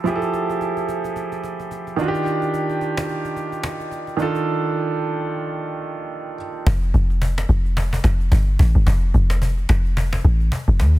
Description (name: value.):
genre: amapiano.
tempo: 109 BPM.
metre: 4/4.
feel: swing 58% on 16ths.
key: unclear.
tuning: A4 = 441 Hz.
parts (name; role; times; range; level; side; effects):
clear grand piano; accompaniment; 0.0-6.7 s; Eb3 to A4; -22 LUFS; right 2 dB; none.
cajon; drums; 0.1-11.0 s; none; -28 LUFS; equal; none.
deep log drum bass; bass; 6.7-11.0 s; F1 to Eb2; -16 LUFS; equal; none.
room: small room reverb.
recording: dense, heavily limited modern master.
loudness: -18 LUFS.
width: side -16 dB against mid.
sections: 0.0-6.7 A section; 6.7-11.0 B section.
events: drop 6.7-11.0.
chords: 0.0 Fmaj9; 2.0 Ebmaj9; 6.7 N.C..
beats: | 0.06 0.61 1.16 1.71 | 2.26 2.81 3.36 3.91 | 4.46 5.01 5.57 6.12 | 6.67 7.22 7.77 8.32 | 8.87 9.42 9.97 10.52.